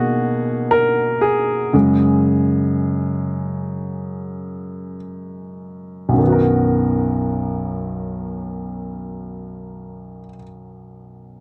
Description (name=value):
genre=pop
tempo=free time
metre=none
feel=none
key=B major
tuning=A4 = 440 Hz
part: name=clear baby grand piano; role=accompaniment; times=0.0-11.4 s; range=B1 to A#4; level=-20 LUFS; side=equal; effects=none
room=little or no reverb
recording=dry, close 1970s-style studio recording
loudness=-19 LUFS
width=mono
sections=0.0-6.2 A section; 6.2-11.0 B section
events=slowing down 0.0-6.2; grand piano solo 0.0-6.2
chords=0.0 Bmaj7; 1.7 F#sus2; 6.2 Bmaj7